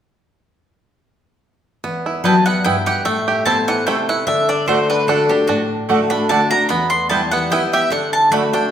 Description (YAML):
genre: bluegrass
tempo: 148 BPM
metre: 3/4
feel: swing 53% on 8ths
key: E minor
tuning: A4 = 440 Hz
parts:
  - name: picked steel-string acoustic guitar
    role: accompaniment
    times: 1.8-8.7 s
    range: E2 to F#4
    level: -20 LUFS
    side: left 3 dB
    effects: none
  - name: bluegrass banjo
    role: arpeggios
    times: 1.8-8.7 s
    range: E3 to G4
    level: -21 LUFS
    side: right 3 dB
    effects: none
  - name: mandolin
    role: stabs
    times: 2.2-8.4 s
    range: A3 to A5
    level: -22 LUFS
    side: right 5 dB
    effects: none
  - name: mandolin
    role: melody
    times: 2.3-8.7 s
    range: F#4 to C6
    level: -18 LUFS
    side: equal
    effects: none
room: wet recital hall reverb, RT60 1.5 s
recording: minimal, uncompressed stereo recording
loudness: -14 LUFS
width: side -9 dB against mid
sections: 1.8-8.7 A section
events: none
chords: 1.8 Em; 3.1 Am; 4.3 D; 6.7 Em; 7.9 D